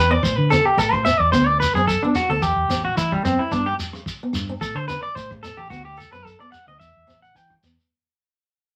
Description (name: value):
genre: highlife guitar band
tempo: 110 BPM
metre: 4/4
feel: swing 55% on 16ths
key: unclear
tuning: A4 = 440 Hz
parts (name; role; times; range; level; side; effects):
- fingerpicked acoustic archtop guitar; accompaniment; 0.0-7.8 s; E3 to C4; -28 LUFS; equal; none
- electric guitar at the edge of break-up; arpeggios; 0.0-7.5 s; G3 to G5; -22 LUFS; equal; none
- fingered electric bass; bass; 0.0-7.7 s; A1 to E3; -27 LUFS; equal; none
- crunchy breakbeat drum kit; drums; 0.2-7.8 s; hi-hat, kick drum, rim click; -33 LUFS; equal; none
- shekere; percussion; 0.2-7.9 s; none; -31 LUFS; equal; none
room: moderate club reverb, RT60 0.5 s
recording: vinyl crackle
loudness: -20 LUFS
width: mono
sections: 0.0-7.9 A section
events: fade-out 0.0-7.9; clean electric guitar solo 0.0-7.9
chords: 0.2 Am; 1.3 D; 2.4 C; 3.5 G; 4.6 Am; 5.7 D; 6.8 C